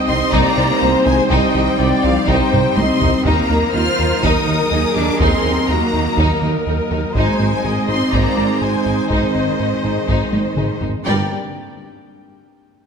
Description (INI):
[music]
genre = cinematic, hybrid orchestral and electronic film score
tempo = 123 BPM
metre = 4/4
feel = straight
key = G phrygian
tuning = A4 = 441 Hz
[part]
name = rich symphonic violin section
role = melody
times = 0.0-11.3 s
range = Eb5 to F6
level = -23 LUFS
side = left 4 dB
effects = none
[part]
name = warm symphonic violin section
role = second line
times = 0.0-11.3 s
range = Eb4 to D5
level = -22 LUFS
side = left 2 dB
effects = none
[part]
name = warm symphonic viola section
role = accompaniment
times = 0.0-11.3 s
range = G3 to Eb5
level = -24 LUFS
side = equal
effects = none
[part]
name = airy breathy pad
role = sustained chords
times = 0.0-11.3 s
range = Gb3 to Eb5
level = -22 LUFS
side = right 1 dB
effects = chorus
[part]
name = rich symphonic cello section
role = bass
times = 0.0-11.3 s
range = Eb3 to F4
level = -24 LUFS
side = right 1 dB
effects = none
[part]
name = thumb-piano-like synth pluck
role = arpeggios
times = 0.1-11.0 s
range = C3 to Ab4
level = -28 LUFS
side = left 2 dB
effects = none
[part]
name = round analog bass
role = riff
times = 0.1-11.0 s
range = C2 to Ab3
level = -23 LUFS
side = right 1 dB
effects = none
[part]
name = mellow tuba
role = bass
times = 0.1-11.3 s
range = G1 to Eb2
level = -25 LUFS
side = right 4 dB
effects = none
[part]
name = rich symphonic double bass section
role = bass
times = 0.1-11.3 s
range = Ab1 to G2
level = -27 LUFS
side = right 3 dB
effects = none
[part]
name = taiko ensemble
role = drums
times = 0.3-11.0 s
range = none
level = -23 LUFS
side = left 1 dB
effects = none
[sound]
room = wet scoring stage reverb, RT60 2.0 s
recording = none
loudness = -14 LUFS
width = side -6 dB against mid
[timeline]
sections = 0.0-11.1 A section; 11.1-12.9 B section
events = drum fill 2.5-3.3, 10.3-11.1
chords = 0.0 Cm; 3.3 Ebm; 7.2 Ab; 11.1 Gm